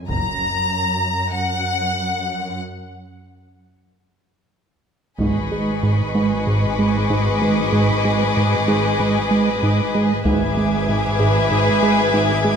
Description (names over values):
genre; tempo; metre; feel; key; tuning
cinematic, suspense film score; 95 BPM; 4/4; straight; unclear; A4 = 440 Hz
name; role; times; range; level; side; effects
warm symphonic cello section; bass; 0.0-12.6 s; Gb2 to G#2; -26 LUFS; right 1 dB; none
clear symphonic violin section; melody; 0.1-12.6 s; D#5 to Bb5; -25 LUFS; left 3 dB; none
clear symphonic double bass section; bass; 0.1-0.7, 5.2-12.6 s; Gb1 to G#1; -26 LUFS; right 2 dB; none
taiko ensemble; drums; 0.1-1.3, 5.2-6.4, 10.2-11.5 s; none; -28 LUFS; left 1 dB; none
warm symphonic violin section; second line; 5.2-12.6 s; G#4 to B4; -21 LUFS; left 2 dB; none
fat analog bass; riff; 5.2-12.6 s; G#2 to G#3; -19 LUFS; right 2 dB; none
rich chamber violin section; texture; 5.2-12.6 s; B5 to G#6; -28 LUFS; left 3 dB; none
room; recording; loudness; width
moderate scoring stage reverb, RT60 2.0 s; none; -16 LUFS; side -7 dB against mid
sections
0.0-5.2 A section; 5.2-12.6 B section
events
break 2.6-5.2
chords
0.1 Gb; 2.6 N.C.; 5.2 G#m